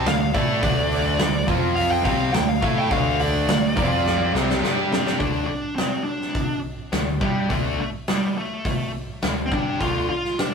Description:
hard rock; 105 BPM; 4/4; straight; D minor; A4 = 440 Hz
dark smooth lead guitar; melody; 0.0-10.5 s; G3 to G5; -26 LUFS; equal; overdrive, tape echo
distorted electric guitar; riff; 0.0-5.2 s; C3 to A4; -25 LUFS; right 7 dB; overdrive
tight distorted guitar; riff; 0.0-10.1 s; C3 to A4; -25 LUFS; left 3 dB; distortion
overdriven picked electric bass; bass; 0.0-10.1 s; C2 to A2; -29 LUFS; equal
huge arena drum kit; drums; 0.1-10.5 s; hi-hat, kick drum, snare drum; -24 LUFS; equal
moderate studio reverb, RT60 0.6 s; rough rehearsal-room recording; -20 LUFS; side -6 dB against mid
0.0-5.2 A section; 5.2-10.5 B section
lead electric guitar solo 0.0-5.2; drum fill 4.1-5.2
0.0 D5; 1.5 F5; 2.1 D5; 3.8 F5; 4.3 C5; 4.6 G5; 5.2 D5

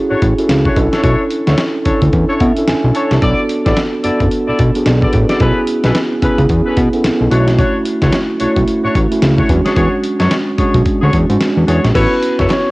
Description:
R&B, new jack swing; 110 BPM; 4/4; swing 60% on 16ths; A4 = 440 Hz
mellow tine electric piano; accompaniment; 0.0-12.7 s; F#3 to A5; -16 LUFS; right 1 dB; medium stereo tremolo, cassette tape
mellow horn section; stabs; 0.1-12.5 s; C#4 to D5; -20 LUFS; left 2 dB; cassette tape
fat analog bass; bass; 0.1-12.5 s; F#1 to B2; -14 LUFS; equal
dusty soul sampler-style drum kit; drums; 0.2-12.7 s; crash cymbal, hi-hat, kick drum, snare drum; -18 LUFS; equal; cassette tape
clear grand piano; melody; 11.9-12.7 s; B4 to C#5; -16 LUFS; left 1 dB; cassette tape
group handclap; percussion; 12.5-12.6 s; barely audible
light reverb; home recording on cassette; -11 LUFS; side -22 dB against mid
0.0-11.9 A section
tine electric piano fill 2.1-3.2
0.0 Dmaj9; 0.8 Bm11; 3.2 E9sus4; 5.4 Amaj9/B; 7.3 Dmaj9/B; 9.5 E13; 11.9 A6

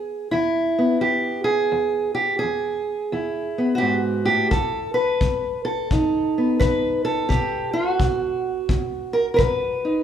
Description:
acoustic country blues, solo or duo; 86 BPM; 4/4; swing 64% on 8ths; E major; A4 = 442 Hz
fingerpicked steel-string acoustic guitar; melody; 0.0-10.0 s; E2 to B4; -20 LUFS; right 1 dB
kick drum; drums; 4.5-9.6 s; -23 LUFS; left 2 dB
moderate recital hall reverb, RT60 1.5 s; recorded in a church or concert hall; -19 LUFS; side -9 dB against mid
0.0-10.0 A section
0.0 E; 4.5 B

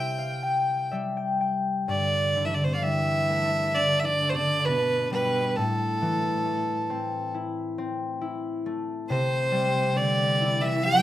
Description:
celtic folk, Celtic slow air; 61-69 BPM; 4/4; rubato; G major; A4 = 440 Hz
clear fiddle; melody; 0.0-11.0 s; A4 to G5; -25 LUFS; right 1 dB; slapback echo
concert harp; accompaniment; 0.0-11.0 s; G2 to G5; -28 LUFS; left 2 dB
dark cello; second line; 1.9-11.0 s; A2 to G3; -32 LUFS; right 2 dB
wet studio reverb, RT60 0.5 s; rough home demo mix; -23 LUFS; side -13 dB against mid
0.0-1.9 A section; 1.9-11.0 B section
harp fill 0.0-1.9
0.0 C; 1.9 Gsus2; 5.6 Am; 9.1 C

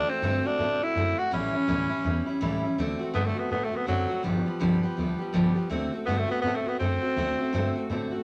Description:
rockabilly; 164 BPM; 4/4; swing 60% on 8ths; D mixolydian; A4 = 440 Hz
raspy tenor saxophone; melody; 0.0-7.9 s; F#3 to F#4; -30 LUFS; equal
picked steel-string acoustic guitar; accompaniment; 0.0-8.2 s; G2 to G4; -31 LUFS; equal
upright bass; bass; 0.0-8.2 s; G1 to A2; -34 LUFS; equal
moderate studio reverb, RT60 0.7 s; -27 LUFS; mono
0.0-2.8 A section; 2.8-8.2 B section
tenor saxophone solo 2.8-8.2
0.0 D7; 1.3 A7; 2.8 D7; 4.2 G7; 5.7 D7

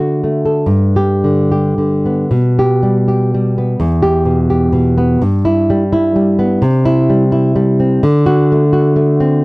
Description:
romantic piece for solo classical guitar; 65-86 BPM; 2/4; rubato; G major; A4 = 440 Hz
nylon-string guitar; solo; 0.0-9.4 s; E2 to A4; -10 LUFS; equal
little or no reverb; dry, close 1970s-style studio recording; -10 LUFS; side -24 dB against mid
0.7-9.4 A section
0.0 D; 0.7 G; 2.3 G/B; 3.8 Em; 5.2 Em/G; 6.6 C; 8.0 D7

